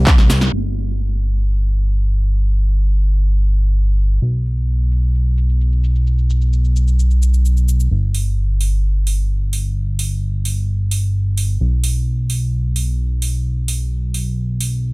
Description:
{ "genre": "EDM, festival progressive house", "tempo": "130 BPM", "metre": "4/4", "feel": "straight", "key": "unclear", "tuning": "A4 = 439 Hz", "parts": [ { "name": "fat analog bass", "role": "bass", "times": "0.0-14.9 s", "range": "G1 to C2", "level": "-15 LUFS", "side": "equal", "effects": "sidechain pumping" }, { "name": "big-room dance drum kit", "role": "drums", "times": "0.1-14.7 s", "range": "cabasa, crash cymbal, handclaps, hi-hat, ride cymbal, snare drum", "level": "-23 LUFS", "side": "right 2 dB", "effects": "low-pass filter on snare, low-pass filter on perc, low-pass filter on hats, low-pass filter on cymbals" } ], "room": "little or no reverb", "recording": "dark, warm production, low-pass filter", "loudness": "-15 LUFS", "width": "side -26 dB against mid", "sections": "0.5-7.9 A section; 7.9-14.9 B section", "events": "drum fill 0.1-0.5; band accent 0.4; filter sweep on drum 0.5-7.9; filter sweep 0.5-7.9, 7.9-14.9; build-up 7.9-14.9", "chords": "none", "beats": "0.07 | 0.53 0.99 1.45 1.91 | 2.38 2.84 3.30 3.76 | 4.22 4.68 5.14 5.61 | 6.07 6.53 6.99 7.45 | 7.91 8.38 8.84 9.30 | 9.76 10.22 10.68 11.14 | 11.61 12.07 12.53 12.99 | 13.45 13.91 14.38 14.84" }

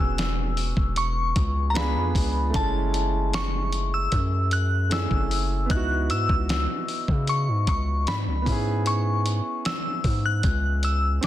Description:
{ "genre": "contemporary R&B", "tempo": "76 BPM", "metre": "4/4", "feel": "straight", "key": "C# minor", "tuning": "A4 = 440 Hz", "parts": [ { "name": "glassy synth bell", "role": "melody", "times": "0.0-11.3 s", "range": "A5 to F#6", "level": "-28 LUFS", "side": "left 2 dB", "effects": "chorus, tremolo, ping-pong delay" }, { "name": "warm concert grand piano", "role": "accompaniment", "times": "0.0-11.3 s", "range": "G#3 to G#4", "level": "-32 LUFS", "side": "right 5 dB", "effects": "none" }, { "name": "long sustained 808-style bass", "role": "bass", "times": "0.0-11.2 s", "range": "E1 to C#3", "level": "-25 LUFS", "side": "equal", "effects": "none" }, { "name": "dusty soul sampler-style drum kit", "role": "drums", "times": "0.2-11.3 s", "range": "hi-hat, kick drum, snare drum", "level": "-27 LUFS", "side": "equal", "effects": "none" } ], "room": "little or no reverb", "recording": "dense, heavily limited modern master", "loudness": "-22 LUFS", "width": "side -13 dB against mid", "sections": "0.0-11.3 A section", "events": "none", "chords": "0.0 E69; 1.8 C#7b9; 2.5 F#m7; 5.7 C#m11; 8.5 C#m7", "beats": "0.17 0.96 1.75 | 2.54 3.33 4.12 4.91 | 5.70 6.49 7.28 8.07 | 8.86 9.65 10.44 11.23" }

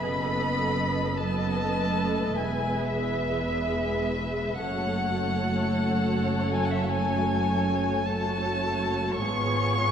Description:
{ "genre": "classical, slow romantic movement for string orchestra", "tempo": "52 BPM", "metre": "4/4", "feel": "rubato", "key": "unclear", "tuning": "A4 = 439 Hz", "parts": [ { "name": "muted chamber violin section", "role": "melody", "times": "0.0-9.9 s", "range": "E5 to C#6", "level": "-30 LUFS", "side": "left 2 dB", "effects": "none" }, { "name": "muted chamber violin section", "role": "second line", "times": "0.0-9.9 s", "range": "G#4 to E5", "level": "-32 LUFS", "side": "left 1 dB", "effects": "none" }, { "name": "muted symphonic viola section", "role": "accompaniment", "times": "0.0-9.9 s", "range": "G#3 to A4", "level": "-31 LUFS", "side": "equal", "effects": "none" }, { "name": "muted studio double bass section", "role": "bass", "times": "0.0-9.9 s", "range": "E1 to G#1", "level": "-32 LUFS", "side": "right 2 dB", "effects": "none" }, { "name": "muted symphonic cello section", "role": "bass", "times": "0.0-9.9 s", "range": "E2 to G#2", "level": "-31 LUFS", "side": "right 3 dB", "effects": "none" } ], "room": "wet concert hall reverb, RT60 2.0 s", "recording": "none", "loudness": "-24 LUFS", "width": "side -8 dB against mid", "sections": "0.0-9.9 A section", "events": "none", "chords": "0.0 B7/F#; 2.4 E; 4.7 F#m; 9.2 C#7/G#", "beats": "| 0.04 1.21 2.37 3.52 | 4.65 5.81 6.95 8.10 | 9.22" }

